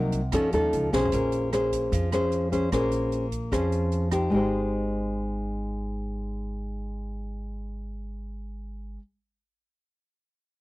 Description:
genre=bossa nova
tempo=151 BPM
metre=4/4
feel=straight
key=Ab major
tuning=A4 = 435 Hz
part: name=nylon-string guitar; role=accompaniment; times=0.0-9.0 s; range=C3 to C5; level=-26 LUFS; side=left 1 dB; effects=none
part: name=upright bass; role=bass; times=0.0-9.0 s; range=Ab1 to F2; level=-31 LUFS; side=right 1 dB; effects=none
part: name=swinging big-band drum kit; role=drums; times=0.1-4.2 s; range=hi-hat, kick drum, rim click, snare drum, toms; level=-34 LUFS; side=right 1 dB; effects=none
room=little or no reverb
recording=dry, close 1970s-style studio recording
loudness=-24 LUFS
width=side -18 dB against mid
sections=0.0-1.1 A section; 1.1-4.3 B section; 4.3-7.5 C section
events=drum fill 0.9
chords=0.3 F7alt; 1.1 Bbm9; 4.3 Abmaj7

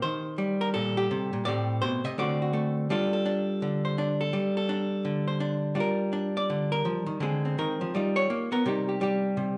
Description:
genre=solo jazz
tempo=167 BPM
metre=4/4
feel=swing 63% on 8ths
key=G minor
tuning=A4 = 440 Hz
part: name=archtop guitar, miked and amplified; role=solo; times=0.0-9.6 s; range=A2 to Eb5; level=-28 LUFS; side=equal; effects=none
room=moderate large studio reverb, RT60 1.2 s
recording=band playing live in one room, nothing above 10.7 kHz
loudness=-28 LUFS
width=mono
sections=0.0-5.8 A section; 5.8-9.6 B section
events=hollow-body jazz guitar solo 5.8-9.6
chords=0.0 Eb; 1.5 Am11; 2.2 D7; 2.9 Gsus2; 5.8 Gm7; 7.2 Dm7b5; 7.9 G7alt; 8.6 Cm7

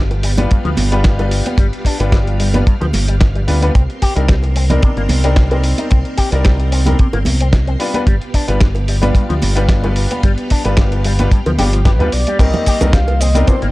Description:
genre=nu-disco, nu disco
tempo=111 BPM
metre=4/4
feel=swing 54% on 16ths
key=C minor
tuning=A4 = 441 Hz
part: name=string machine, full ensemble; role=sustained chords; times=0.0-13.7 s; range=Eb3 to C6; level=-27 LUFS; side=equal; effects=ensemble chorus, sidechain pumping
part: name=fingered electric bass with an envelope filter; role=bass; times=0.0-13.7 s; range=G1 to D2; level=-15 LUFS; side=equal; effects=tube saturation
part: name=dusty soul sampler-style drum kit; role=drums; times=0.1-13.7 s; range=crash cymbal, hi-hat, shaker, snare drum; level=-23 LUFS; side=equal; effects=none
part: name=bongos and congas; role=percussion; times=0.1-13.6 s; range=none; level=-22 LUFS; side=right 2 dB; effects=none
part: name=electric guitar with an envelope filter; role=riff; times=0.2-13.7 s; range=G2 to G4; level=-25 LUFS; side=left 3 dB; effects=wide subtle chorus, tape echo
part: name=clear grand piano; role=accompaniment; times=0.4-13.7 s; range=G3 to D5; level=-22 LUFS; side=left 1 dB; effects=sidechain pumping, low-pass filter, tape echo
part: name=kick drum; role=drums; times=0.5-13.6 s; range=none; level=-13 LUFS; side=equal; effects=none
part: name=soft octave-layered synth lead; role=melody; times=11.6-13.6 s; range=G4 to F5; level=-21 LUFS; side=left 1 dB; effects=chorus
room=studio reverb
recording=dry, gritty hardware recording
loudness=-12 LUFS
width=side -19 dB against mid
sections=0.0-12.4 A section; 12.4-13.7 B section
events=drop 12.4-13.7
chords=0.0 G7; 3.7 Cm7; 7.8 G7; 12.4 Cm7

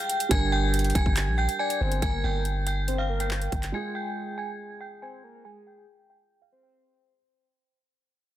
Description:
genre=hip hop, drill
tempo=140 BPM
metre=4/4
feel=half-time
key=G phrygian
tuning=A4 = 439 Hz
part: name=metallic FM bell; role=melody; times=0.0-7.1 s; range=F5 to Ab6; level=-30 LUFS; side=equal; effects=chorus, phaser, low-pass filter, ping-pong delay
part: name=dark concert grand piano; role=accompaniment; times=0.0-7.2 s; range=G3 to Bb4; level=-34 LUFS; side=right 5 dB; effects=low-pass filter
part: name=drill drum kit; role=drums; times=0.1-3.7 s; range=handclaps, hi-hat, kick drum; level=-28 LUFS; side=equal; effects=none
part: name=long sustained 808-style bass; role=bass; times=0.3-3.7 s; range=F1 to Bb1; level=-27 LUFS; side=equal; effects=none
part: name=soft octave-layered synth lead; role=second line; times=1.6-7.1 s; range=Ab4 to D5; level=-35 LUFS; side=left 2 dB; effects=chorus, phaser, ping-pong delay
room=little or no reverb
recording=dense, heavily limited modern master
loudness=-24 LUFS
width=side -13 dB against mid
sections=0.3-7.2 A section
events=break 0.0-0.3; fade-out 0.3-7.2; filter sweep 0.3-7.2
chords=0.3 Gm; 3.7 Fmadd9

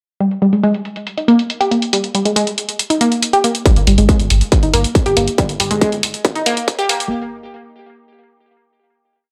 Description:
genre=driving peak-time techno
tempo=139 BPM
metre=4/4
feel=straight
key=G phrygian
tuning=A4 = 445 Hz
part: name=analog pluck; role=riff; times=0.2-6.9 s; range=G3 to G4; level=-18 LUFS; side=equal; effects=chorus, phaser, tube saturation, sidechain pumping, tape echo
part: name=electronic hi-hat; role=drums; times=0.2-7.1 s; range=none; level=-22 LUFS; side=equal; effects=sidechain pumping on hats, low-pass filter on hats, low-pass filter on room
part: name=electronic kick drum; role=drums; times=3.7-6.8 s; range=none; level=-17 LUFS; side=equal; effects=distortion
part: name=saturated sub bass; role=bass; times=3.8-7.0 s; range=G1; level=-20 LUFS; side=equal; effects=tube saturation, sidechain pumping, low-pass filter
room=wet stone room reverb, RT60 0.9 s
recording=dry, gritty hardware recording, high-pass filter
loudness=-15 LUFS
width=mono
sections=0.2-3.7 intro; 3.7-7.1 build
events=filter sweep on synth arpeggio sound 0.2-3.7, 3.7-7.1; build-up 3.7-7.1; filter sweep 3.7-7.1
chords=0.2 Gm; 3.7 N.C.

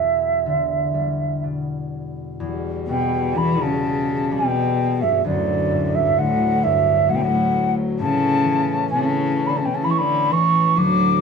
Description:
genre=celtic folk, Celtic slow air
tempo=64 BPM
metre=3/4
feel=rubato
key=E dorian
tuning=A4 = 442 Hz
part: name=mellow wooden flute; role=melody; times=0.0-11.2 s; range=D5 to D6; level=-20 LUFS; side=right 2 dB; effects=none
part: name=concert harp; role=accompaniment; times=0.0-11.2 s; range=D2 to E4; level=-26 LUFS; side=left 2 dB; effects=none
part: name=hand-pumped harmonium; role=sustained chords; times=2.4-11.2 s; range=D2 to C#4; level=-27 LUFS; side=left 3 dB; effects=none
part: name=rich cello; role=second line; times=2.9-11.2 s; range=F#2 to F#3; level=-22 LUFS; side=left 1 dB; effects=none
room=moderate stone room reverb, RT60 1.0 s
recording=band playing live in one room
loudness=-18 LUFS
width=side -5 dB against mid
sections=0.0-2.4 A section; 2.4-11.2 A section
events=none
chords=0.0 Em7; 2.4 Em; 5.2 D; 8.0 A

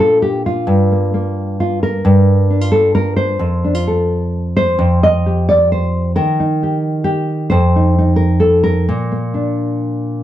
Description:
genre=folk, solo fingerstyle acoustic guitar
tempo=131 BPM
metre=3/4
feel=straight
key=unclear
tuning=A4 = 440 Hz
part: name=nylon-string guitar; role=solo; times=0.0-10.2 s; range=F2 to Eb5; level=-12 LUFS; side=equal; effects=none
room=light reverb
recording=dark, warm production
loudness=-12 LUFS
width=side -12 dB against mid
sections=0.0-10.2 A section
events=none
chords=0.0 Bb; 0.7 Gm7; 2.0 Gm11; 3.4 F; 4.8 Fsus2; 6.2 Eb; 7.5 F7; 8.9 Bb

